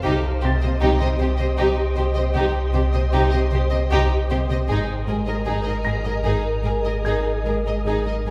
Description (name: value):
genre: cinematic, suspense film score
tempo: 77 BPM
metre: 3/4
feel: straight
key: unclear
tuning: A4 = 440 Hz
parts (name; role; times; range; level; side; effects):
- warm symphonic violin section; melody; 0.0-8.3 s; G4 to Eb5; -32 LUFS; equal; none
- warm studio violin section; second line; 0.0-8.3 s; Eb4 to C5; -32 LUFS; equal; none
- dark symphonic viola section; accompaniment; 0.0-8.3 s; G4 to Ab4; -30 LUFS; equal; none
- flickering grainy texture; sustained chords; 0.0-8.3 s; G4 to Eb5; -30 LUFS; equal; built-in reverb
- dark symphonic double bass section; bass; 0.0-8.3 s; Ab1 to C2; -30 LUFS; equal; none
- warm symphonic cello section; bass; 0.0-8.3 s; Ab2 to C3; -30 LUFS; equal; none
- pure sine sub bass; drone; 0.0-8.3 s; Ab1 to C2; -26 LUFS; equal; none
- dark concert grand piano; texture; 0.4-8.3 s; Ab6 to Bb6; -37 LUFS; equal; none
room: wet recital hall reverb, RT60 1.4 s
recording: recorded in a church or concert hall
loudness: -21 LUFS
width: mono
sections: 0.0-8.3 A section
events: none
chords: 0.0 Cm; 4.7 Absus2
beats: | 0.04 0.81 1.58 | 2.36 3.14 3.92 | 4.69 5.47 6.25 | 7.05 7.86